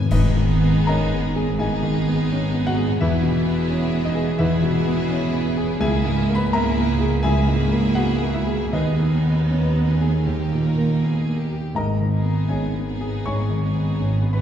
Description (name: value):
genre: classical, romantic movement for piano and orchestra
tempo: 76-88 BPM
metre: 4/4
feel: rubato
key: G# minor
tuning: A4 = 440 Hz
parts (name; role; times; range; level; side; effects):
- clear concert grand piano; melody; 0.0-14.4 s; C#2 to C#6; -21 LUFS; equal; none
- warm chamber violin section; melody; 0.0-14.4 s; G4 to G#5; -34 LUFS; left 4 dB; none
- clear chamber double bass section; bass; 0.0-14.4 s; E1 to D#2; -27 LUFS; right 2 dB; none
- timpani; percussion; 0.0-1.2, 10.2-12.8 s; G#2 to D#3; -25 LUFS; left 3 dB; none
- rich chamber violin section; second line; 0.1-14.4 s; D#4 to E4; -34 LUFS; left 2 dB; none
- rich chamber viola section; accompaniment; 0.1-14.4 s; A#3 to B3; -29 LUFS; right 4 dB; none
- rich chamber cello section; bass; 0.1-14.4 s; C#2 to G#2; -27 LUFS; right 1 dB; none
- clash cymbals and concert bass drum; percussion; 0.1-1.6 s; none; -26 LUFS; equal; none
room: wet scoring stage reverb, RT60 1.6 s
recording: heard from further back in the room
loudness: -18 LUFS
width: side -9 dB against mid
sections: 0.1-14.4 A section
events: band accent 0.1-0.9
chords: 0.1 G#m; 3.0 Emaj7; 5.8 A#m7b5/C#; 8.7 G#m/D#; 10.2 D#; 11.8 G#m